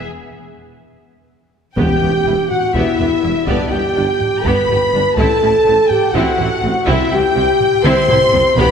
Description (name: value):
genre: cinematic, epic orchestral film score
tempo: 247 BPM (eighths)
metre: 7/8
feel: straight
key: E minor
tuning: A4 = 439 Hz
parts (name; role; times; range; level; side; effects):
- dark symphonic violin section; melody; 0.0-8.7 s; D5 to C6; -23 LUFS; left 2 dB; none
- rich symphonic violin section; second line; 0.0-8.7 s; D5 to C6; -23 LUFS; left 2 dB; none
- dark French horn section; sustained chords; 0.0-8.7 s; D4 to C5; -15 LUFS; left 1 dB; none
- rich symphonic viola section; accompaniment; 1.8-8.7 s; G3 to G4; -22 LUFS; right 1 dB; none
- clear symphonic double bass section; bass; 1.8-8.7 s; E1 to C2; -26 LUFS; right 3 dB; none
- mellow tuba; bass; 1.8-8.7 s; E1 to C2; -25 LUFS; right 3 dB; none
- rich symphonic cello section; bass; 1.8-8.6 s; E2 to C3; -26 LUFS; right 3 dB; none
- taiko ensemble; drums; 1.8-8.7 s; none; -23 LUFS; equal; none
- timpani; percussion; 1.8-2.5 s; E2; -24 LUFS; right 1 dB; none
room: wet concert hall reverb, RT60 2.5 s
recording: none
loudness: -12 LUFS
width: side -7 dB against mid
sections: 0.0-1.8 A section; 1.8-8.7 B section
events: break 0.1-1.8; drum fill 7.8-8.6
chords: 0.0 N.C.; 1.8 Em; 3.5 G; 5.2 Am; 6.9 C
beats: | 0.07 0.31 0.55 0.80 1.04 1.28 1.52 | 1.77 2.01 2.25 2.50 2.74 2.98 3.23 | 3.47 3.71 3.95 4.20 4.44 4.68 4.93 | 5.17 5.41 5.65 5.90 6.14 6.38 6.63 | 6.87 7.11 7.35 7.60 7.84 8.08 8.33 | 8.57